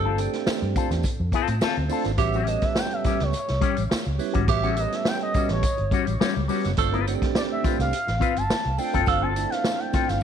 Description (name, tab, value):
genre	funk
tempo	105 BPM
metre	4/4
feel	straight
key	unclear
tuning	A4 = 440 Hz
part	expressive synth lead	melody	0.0-10.2 s	A4 to A5	-29 LUFS	equal	chorus, tape echo
part	growling tenor saxophone	second line	0.0-9.3 s	G4 to A4	-28 LUFS	right 10 dB	none
part	percussive tonewheel organ	stabs	0.0-10.2 s	G3 to A4	-30 LUFS	right 13 dB	slow rotary speaker
part	vintage muted fingered electric bass	bass	0.0-10.2 s	F#1 to A2	-26 LUFS	equal	none
part	electric guitar with an envelope filter	accompaniment	0.1-10.1 s	G3 to B4	-28 LUFS	left 12 dB	none
part	vintage drum kit	drums	0.2-10.2 s	hi-hat, kick drum, snare drum	-27 LUFS	equal	vintage 12-bit sampler grit
part	tambourine	percussion	0.2-10.2 s	none	-44 LUFS	left 14 dB	none
room	light reverb, small room ambience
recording	1960s-style stereo with parts hard left and right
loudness	-21 LUFS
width	side -8 dB against mid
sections	0.0-10.2 A section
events	analog synth lead solo 0.0-10.2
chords	0.0 G9sus4; 2.2 A13; 6.8 G9sus4